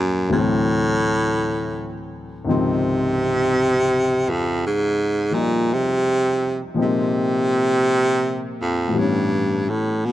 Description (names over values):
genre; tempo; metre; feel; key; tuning
jazz ballad; 56 BPM; 4/4; swing 66% on 8ths; unclear; A4 = 439 Hz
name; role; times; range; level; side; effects
edgy baritone saxophone; melody; 0.0-10.1 s; F2 to C3; -19 LUFS; right 1 dB; none
warm baby grand piano; accompaniment; 0.0-10.1 s; Db2 to Eb4; -24 LUFS; left 3 dB; none
room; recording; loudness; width
moderate plate reverb, RT60 3.8 s; dark, warm production; -18 LUFS; side -14 dB against mid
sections
0.0-10.1 A section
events
none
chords
0.3 D9; 2.5 Dbmaj9; 6.8 Bb9sus4; 8.9 A9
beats
0.30 1.38 | 2.46 3.54 4.62 5.70 | 6.77 7.85 8.93 10.00